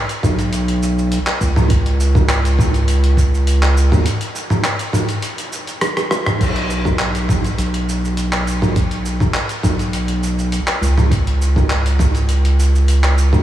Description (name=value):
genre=organic downtempo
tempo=102 BPM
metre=4/4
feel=straight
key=unclear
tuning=A4 = 435 Hz
part: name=dusty soul sampler-style drum kit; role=drums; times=0.1-13.4 s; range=crash cymbal, handclaps, hi-hat, rim click, shaker, toms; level=-19 LUFS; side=right 1 dB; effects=none
part: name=round analog bass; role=bass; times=0.2-13.4 s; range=B1 to E2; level=-15 LUFS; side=equal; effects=sidechain pumping
part: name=electronic kick drum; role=drums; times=0.2-12.1 s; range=none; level=-18 LUFS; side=equal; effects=none
room=light reverb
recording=studio ambience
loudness=-14 LUFS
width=side -12 dB against mid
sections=0.0-6.4 A section; 6.4-13.4 B section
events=break 4.1-6.4; drum fill 5.8-6.4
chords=none